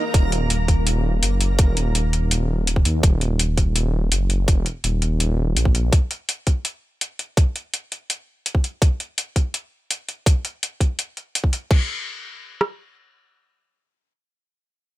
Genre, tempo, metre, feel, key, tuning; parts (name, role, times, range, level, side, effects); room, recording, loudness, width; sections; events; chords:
half-time drum and bass; 166 BPM; 4/4; half-time; Eb minor; A4 = 440 Hz
deep dark ambient pad; sustained chords; 0.0-3.0 s; Eb4 to Gb5; -42 LUFS; right 1 dB
dark detuned saw bass; bass; 0.1-5.9 s; Eb1 to Eb2; -20 LUFS; equal
drum and bass drum kit; drums; 0.1-12.7 s; kick drum, rim click; -17 LUFS; equal
drum and bass drum kit; drums; 0.1-11.8 s; crash cymbal, hi-hat; -24 LUFS; left 1 dB
little or no reverb; -19 LUFS; side -16 dB against mid
0.0-11.7 A section; 11.7-14.6 B section
0.1 Ebm7; 5.9 N.C.